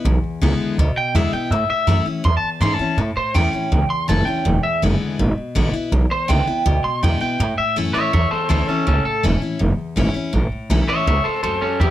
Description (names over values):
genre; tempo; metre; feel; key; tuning
rockabilly; 163 BPM; 4/4; straight; unclear; A4 = 438 Hz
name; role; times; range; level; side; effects
picked steel-string acoustic guitar; accompaniment; 0.0-11.9 s; E2 to E4; -24 LUFS; left 4 dB; none
upright bass; bass; 0.0-11.9 s; E1 to A2; -18 LUFS; right 1 dB; none
electric guitar through a small old amp; melody; 1.0-11.9 s; C#4 to C6; -20 LUFS; right 1 dB; tape echo
room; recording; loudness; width
light reverb; none; -17 LUFS; side -13 dB against mid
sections
0.0-3.0 A section; 3.0-11.9 B section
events
none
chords
0.0 E7; 1.5 A; 4.5 E7